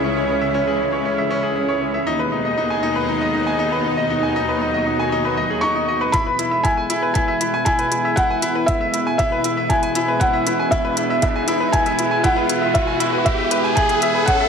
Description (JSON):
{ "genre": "piano and strings electronica", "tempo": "118 BPM", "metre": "4/4", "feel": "straight", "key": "E major", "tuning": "A4 = 442 Hz", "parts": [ { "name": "lush unison pad", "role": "sustained chords", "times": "0.0-14.5 s", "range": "B2 to E4", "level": "-24 LUFS", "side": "equal", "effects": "chorus, sidechain pumping" }, { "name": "bright grand piano", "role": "riff", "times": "0.0-14.5 s", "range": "C#4 to G#5", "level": "-21 LUFS", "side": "equal", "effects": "ping-pong delay" }, { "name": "clear studio cello section", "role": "bass", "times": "0.0-6.1 s", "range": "C#2 to D#2", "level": "-28 LUFS", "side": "left 2 dB", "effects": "sidechain pumping" }, { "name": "felt-muted upright piano", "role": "melody", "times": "5.6-14.5 s", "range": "E5 to C#6", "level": "-21 LUFS", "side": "equal", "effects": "ping-pong delay" }, { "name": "electronic hi-hat", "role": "drums", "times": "6.1-14.4 s", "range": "none", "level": "-28 LUFS", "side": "left 2 dB", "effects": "none" }, { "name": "electronic kick drum", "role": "drums", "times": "6.1-14.4 s", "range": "none", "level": "-22 LUFS", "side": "equal", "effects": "none" }, { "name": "riser", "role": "sound effects", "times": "8.3-14.5 s", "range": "none", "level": "-25 LUFS", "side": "right 1 dB", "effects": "none" } ], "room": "moderate concert hall reverb, RT60 2.4 s", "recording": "none", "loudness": "-17 LUFS", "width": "side -6 dB against mid", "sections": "0.0-6.1 A section; 6.1-14.5 B section", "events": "build-up 6.1-14.5; filter sweep on analog synth pad 6.1-14.5; riser 8.3-14.5", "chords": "0.0 C#m; 2.1 G#m/D#; 6.1 E", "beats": "| 0.04 0.55 1.06 1.56 | 2.07 2.58 3.09 3.60 | 4.11 4.62 5.12 5.63 | 6.14 6.65 7.16 7.67 | 8.18 8.68 9.19 9.70 | 10.21 10.72 11.23 11.73 | 12.24 12.75 13.26 13.77 | 14.28" }